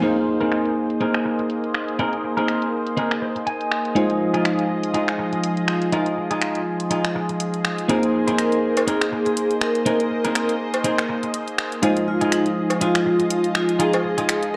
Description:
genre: nu-disco, nu disco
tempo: 122 BPM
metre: 4/4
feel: swing 56% on 16ths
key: unclear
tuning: A4 = 441 Hz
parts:
  - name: bell-like tine electric piano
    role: accompaniment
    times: 0.0-14.6 s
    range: Ab3 to C5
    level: -27 LUFS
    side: equal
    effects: dub echo
  - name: lush unison pad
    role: sustained chords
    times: 0.0-14.6 s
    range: F3 to Eb5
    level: -28 LUFS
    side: equal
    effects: chorus
  - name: clean electric guitar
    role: riff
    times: 0.0-14.5 s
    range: C4 to Ab5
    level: -28 LUFS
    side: equal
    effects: subtle chorus, low-pass filter, dub echo
  - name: pop drum kit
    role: drums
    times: 0.0-14.5 s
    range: crash cymbal, finger snaps, hi-hat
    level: -29 LUFS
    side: equal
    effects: low-pass filter on hats, low-pass filter on perc, low-pass filter on snare, low-pass filter on cymbals
  - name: vibraphone with medium hard mallets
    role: melody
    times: 8.4-14.6 s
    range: Eb4 to Bb4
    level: -25 LUFS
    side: equal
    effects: delay
  - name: cowbell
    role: percussion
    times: 8.8-14.0 s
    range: none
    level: -29 LUFS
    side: equal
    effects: none
room: wet echo chamber reverb, RT60 1.4 s, digital ambience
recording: dark, warm production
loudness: -22 LUFS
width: mono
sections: 0.0-14.6 A section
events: filter sweep on drum 0.0-14.6; clean electric guitar fill 3.0-4.0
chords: 0.0 Bb9sus4; 4.0 Fm7; 7.9 Bb9sus4; 11.8 Fm7

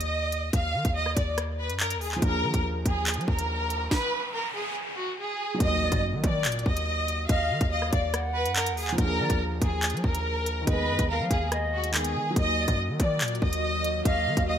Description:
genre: hip hop, drill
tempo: 142 BPM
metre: 4/4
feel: half-time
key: Eb harmonic minor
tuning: A4 = 438 Hz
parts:
  - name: rich studio violin section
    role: melody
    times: 0.0-14.6 s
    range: Gb4 to F5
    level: -29 LUFS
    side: equal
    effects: digital delay
  - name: hard-hitting 808-style bass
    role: bass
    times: 0.0-14.6 s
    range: Eb2 to Gb3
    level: -30 LUFS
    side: equal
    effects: none
  - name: drill drum kit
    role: drums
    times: 0.0-14.5 s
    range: handclaps, hi-hat, kick drum, rim click, snare drum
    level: -28 LUFS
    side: equal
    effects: none
  - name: dark grand piano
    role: accompaniment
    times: 2.2-14.6 s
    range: Eb3 to Ab4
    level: -34 LUFS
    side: right 1 dB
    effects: none
  - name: riser and impact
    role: sound effects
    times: 3.1-7.3 s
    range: none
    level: -38 LUFS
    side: equal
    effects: none
  - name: concert flute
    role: second line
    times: 5.8-14.6 s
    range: D5 to Gb5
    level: -33 LUFS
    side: left 1 dB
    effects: digital delay
  - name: warbly tape-like pad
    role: sustained chords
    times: 13.1-14.6 s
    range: Eb3 to Gb4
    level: -35 LUFS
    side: left 2 dB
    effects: chorus, built-in reverb, phaser
room: light reverb, digital ambience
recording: none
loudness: -24 LUFS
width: side -9 dB against mid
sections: 0.0-5.6 A section; 5.6-14.6 B section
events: break 0.0-0.5; riser 3.1-5.6; stop 3.9-5.6; impact 5.6-7.3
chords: 0.0 Ebm; 2.2 Bb7/Eb; 3.9 N.C.; 5.6 Ebmadd9; 9.0 Bb7/Eb; 10.7 Abm/Eb; 12.4 Ebmadd9

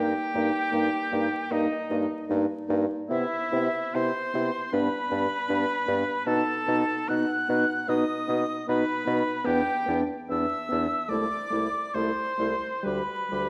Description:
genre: classical, slow romantic movement for wind quintet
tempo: 65-80 BPM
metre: 4/4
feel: rubato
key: Eb major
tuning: A4 = 440 Hz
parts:
  - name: silver concert flute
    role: melody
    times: 0.0-13.5 s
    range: Eb5 to F#6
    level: -34 LUFS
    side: equal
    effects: none
  - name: warm oboe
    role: second line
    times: 0.0-13.5 s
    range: Eb4 to F#5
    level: -34 LUFS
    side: equal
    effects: none
  - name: clear clarinet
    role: accompaniment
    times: 0.0-13.5 s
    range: D4 to G4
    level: -33 LUFS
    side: equal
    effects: none
  - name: warm French horn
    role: accompaniment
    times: 0.0-13.5 s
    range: G3 to B3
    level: -35 LUFS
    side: equal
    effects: none
  - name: warm bassoon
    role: bass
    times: 0.0-13.5 s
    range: C2 to C3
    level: -34 LUFS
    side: equal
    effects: none
room: wet recital hall reverb, RT60 1.5 s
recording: vinyl crackle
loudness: -27 LUFS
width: mono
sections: 0.0-13.5 A section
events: none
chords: 0.0 Eb/G; 3.1 Cmaj7; 4.7 G; 6.3 B7; 9.5 E5; 11.1 Am/C; 12.8 G/D

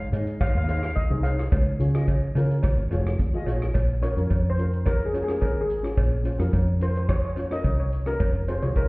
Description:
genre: calypso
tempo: 108 BPM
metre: 4/4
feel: straight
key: Bb minor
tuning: A4 = 441 Hz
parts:
  - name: steel pan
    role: melody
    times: 0.0-8.9 s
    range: Ab4 to F5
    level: -30 LUFS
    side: left 1 dB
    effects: none
  - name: fingered electric bass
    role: bass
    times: 0.0-8.9 s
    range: F1 to Db3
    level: -24 LUFS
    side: equal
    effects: none
  - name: steel pan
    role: accompaniment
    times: 0.1-8.9 s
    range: C4 to Eb5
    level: -33 LUFS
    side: left 1 dB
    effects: none
  - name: warm soul drum kit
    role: drums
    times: 0.1-8.9 s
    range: hi-hat, kick drum, rim click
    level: -25 LUFS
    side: equal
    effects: none
  - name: cowbell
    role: percussion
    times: 0.1-8.9 s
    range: none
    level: -35 LUFS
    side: equal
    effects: none
room: light reverb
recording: heard muffled through a wall, stone room reverb, EQ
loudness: -22 LUFS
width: side -25 dB against mid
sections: 0.0-3.7 A section; 3.7-8.9 B section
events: steel pan solo 3.7-8.9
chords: 0.0 Ab6; 1.5 Db; 3.7 Bbmadd9; 8.2 Fm

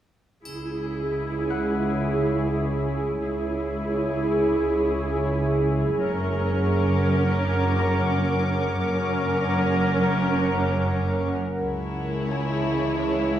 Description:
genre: cinematic, suspense film score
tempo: 86 BPM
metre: 4/4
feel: straight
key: C# dorian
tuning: A4 = 440 Hz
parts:
  - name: muted symphonic viola section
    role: accompaniment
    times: 0.5-13.4 s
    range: G#3 to A#4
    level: -27 LUFS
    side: right 2 dB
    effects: none
  - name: deep dark ambient pad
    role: sustained chords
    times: 0.9-13.4 s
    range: C#4 to F#5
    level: -28 LUFS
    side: equal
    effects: chorus, built-in reverb
  - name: muted studio cello section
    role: bass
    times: 0.5-13.4 s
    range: C#2 to F#2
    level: -28 LUFS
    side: right 1 dB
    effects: none
  - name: muted symphonic double bass section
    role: bass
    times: 0.5-12.3 s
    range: F#1 to C#2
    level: -28 LUFS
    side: right 1 dB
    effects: none
  - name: triangle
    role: percussion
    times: 0.5-1.8 s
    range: none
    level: -46 LUFS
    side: equal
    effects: none
  - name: Celtic harp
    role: texture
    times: 1.5-13.4 s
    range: F#5 to A#5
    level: -37 LUFS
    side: left 5 dB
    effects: none
  - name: muted symphonic violin section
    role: texture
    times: 6.0-13.4 s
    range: G#5 to D6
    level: -36 LUFS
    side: left 6 dB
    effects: none
  - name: muted symphonic violin section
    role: melody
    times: 11.6-13.4 s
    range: C#5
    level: -37 LUFS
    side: left 1 dB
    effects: none
  - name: muted chamber violin section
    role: second line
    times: 11.6-13.4 s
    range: E4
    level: -28 LUFS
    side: right 1 dB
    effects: none
room: moderate scoring stage reverb, RT60 1.9 s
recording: studio reverb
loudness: -22 LUFS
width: side -11 dB against mid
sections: 0.5-11.6 A section; 11.6-13.4 B section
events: none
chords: 0.5 C#m; 6.0 F#; 11.6 C#m

